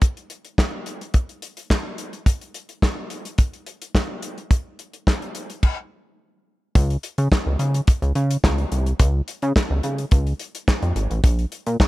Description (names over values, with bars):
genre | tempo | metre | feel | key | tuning
early-eighties boogie funk | 107 BPM | 4/4 | straight | unclear | A4 = 441 Hz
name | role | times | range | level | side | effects
damped 70s drum kit | drums | 0.0-11.9 s | crash cymbal, handclaps, hi-hat, kick drum, snare drum | -20 LUFS | equal | gated reverb
chorused synth bass | bass | 6.8-11.8 s | Ab1 to Db3 | -20 LUFS | equal | none
room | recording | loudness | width
little or no reverb | none | -20 LUFS | side -19 dB against mid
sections
0.0-6.8 A section; 6.8-11.9 B section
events
stop 5.6-6.8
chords
none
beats
| 0.02 0.58 1.14 1.70 | 2.27 2.83 3.39 3.95 | 4.51 5.07 5.63 6.19 | 6.75 7.31 7.87 8.43 | 8.99 9.55 10.12 10.68 | 11.24 11.80